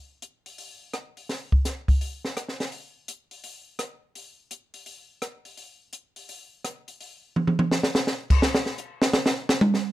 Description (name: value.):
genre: jazz.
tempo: 168 BPM.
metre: 4/4.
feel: swing 65% on 8ths.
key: none.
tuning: none.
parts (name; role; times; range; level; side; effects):
compact cocktail drum kit; drums; 0.2-9.8 s; crash cymbal, hi-hat, kick drum, rim click, snare drum, toms; -23 LUFS; equal; none.
room: light reverb.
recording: dark, warm production.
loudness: -23 LUFS.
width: side -15 dB against mid.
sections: 0.0-8.4 A section; 8.4-9.9 B section.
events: drum fill 7.4-8.1; drum solo 8.4-9.9.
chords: none.